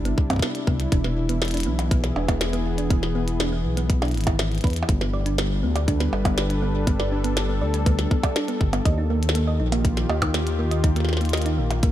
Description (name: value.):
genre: IDM.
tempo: 121 BPM.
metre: 4/4.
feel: straight.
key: unclear.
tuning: A4 = 440 Hz.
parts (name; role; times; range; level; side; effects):
warm analog pad; sustained chords; 0.0-11.9 s; C3 to B4; -28 LUFS; left 2 dB; chorus.
dark detuned saw bass; bass; 0.0-11.9 s; E1 to E2; -24 LUFS; equal; none.
thumb-piano-like synth pluck; arpeggios; 0.1-11.9 s; Bb3 to Eb5; -29 LUFS; right 3 dB; chorus, digital delay.
glitchy drum kit; drums; 0.1-11.9 s; hi-hat, percussion blips, snare drum; -29 LUFS; equal; tape echo.
electronic kick drum; drums; 0.2-11.9 s; none; -21 LUFS; equal; none.
room: little or no reverb.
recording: none.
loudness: -20 LUFS.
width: side -12 dB against mid.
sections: 0.0-11.9 A section.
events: none.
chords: 0.0 Cmaj7; 0.9 E7; 4.9 G; 8.9 Ebadd9.